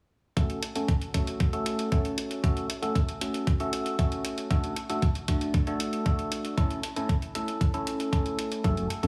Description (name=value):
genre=italo disco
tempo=116 BPM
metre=4/4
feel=straight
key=F# minor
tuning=A4 = 440 Hz
part: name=tine electric piano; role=stabs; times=0.4-9.1 s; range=A3 to A4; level=-33 LUFS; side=equal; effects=phaser, low-pass filter, tape echo
part: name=electronic hi-hat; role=drums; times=0.4-9.1 s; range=none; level=-39 LUFS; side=equal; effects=studio reverb
part: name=electronic kick drum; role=drums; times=0.4-8.7 s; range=none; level=-29 LUFS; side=equal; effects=studio reverb
part: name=fat analog bass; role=bass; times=8.6-9.1 s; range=F#1 to F#2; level=-30 LUFS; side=equal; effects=none
room=light reverb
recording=heavily compressed radio sound, small room ambience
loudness=-28 LUFS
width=mono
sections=0.4-9.1 A section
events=filter sweep on tine electric piano 0.4-9.1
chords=0.4 F#m; 4.5 D; 6.6 A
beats=| 0.37 0.89 1.40 1.92 | 2.44 2.95 3.47 3.99 | 4.51 5.02 5.54 6.06 | 6.58 7.09 7.61 8.13 | 8.64